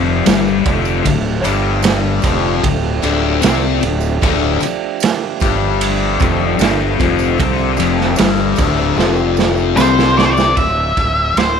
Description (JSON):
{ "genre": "psychedelic rock", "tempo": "76 BPM", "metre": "4/4", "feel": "straight", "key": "D minor", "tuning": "A4 = 438 Hz", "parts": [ { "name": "pedal harmonium", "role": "sustained chords", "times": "0.0-10.5 s", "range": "F3 to D5", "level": "-23 LUFS", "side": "right 13 dB", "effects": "none" }, { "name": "thick fuzz guitar", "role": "riff", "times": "0.0-10.6 s", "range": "D2 to C4", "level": "-16 LUFS", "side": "left 13 dB", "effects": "distortion, phaser" }, { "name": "fuzz fingered electric bass", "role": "bass", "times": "0.0-11.6 s", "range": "D1 to C2", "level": "-19 LUFS", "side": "right 1 dB", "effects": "overdrive" }, { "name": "raw garage drum kit", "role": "drums", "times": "0.3-11.6 s", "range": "kick drum, ride cymbal, snare drum", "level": "-18 LUFS", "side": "right 5 dB", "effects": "none" }, { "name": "tambourine", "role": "percussion", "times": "0.3-10.6 s", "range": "none", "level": "-34 LUFS", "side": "right 18 dB", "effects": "none" }, { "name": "octave-fuzz lead guitar", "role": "melody", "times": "9.8-11.6 s", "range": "C5 to E5", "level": "-14 LUFS", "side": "left 1 dB", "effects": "distortion, slapback echo" } ], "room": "light reverb, studio reverb", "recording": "1960s-style stereo with parts hard left and right", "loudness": "-12 LUFS", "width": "side -7 dB against mid", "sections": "0.0-10.6 A section; 10.6-11.6 B section", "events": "drum fill 9.0-10.6", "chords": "0.0 Dm; 10.6 Dsus2" }